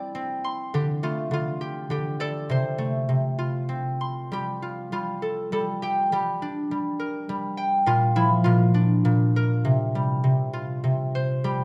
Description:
children's music; 102 BPM; 3/4; rubato; F major; A4 = 441 Hz
concert harp; solo; 0.0-11.6 s; Bb2 to C6; -25 LUFS; equal
moderate scoring stage reverb, RT60 1.7 s; -25 LUFS; mono
0.0-11.5 A section
0.0 Cadd9; 0.7 Gsus2/D; 2.5 F/C; 3.7 N.C.; 4.3 Fadd9; 6.1 Gm; 7.9 Bb; 9.6 Csus4; 10.8 N.C.

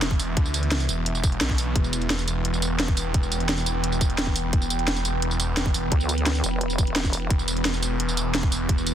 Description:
dark technical drum and bass; 173 BPM; 4/4; straight; E minor; A4 = 436 Hz
deep dark ambient pad; sustained chords; 0.0-8.9 s; E3 to G5; -29 LUFS; right 1 dB; chorus, built-in reverb, sidechain pumping
snarling distorted saw bass; bass; 0.0-8.9 s; E1 to D2; -26 LUFS; equal; distortion, overdrive
drum and bass drum kit; drums; 0.0-8.9 s; hi-hat, snare drum, tambourine; -27 LUFS; right 1 dB
electronic kick drum; drums; 0.1-8.8 s; -23 LUFS; equal
vowel-sweep wobble bass; bass; 5.9-7.3 s; E1 to D2; -26 LUFS; equal; chorus
light reverb, digital ambience; dense, heavily limited modern master; -21 LUFS; side -10 dB against mid
0.0-8.9 A section
0.0 E5

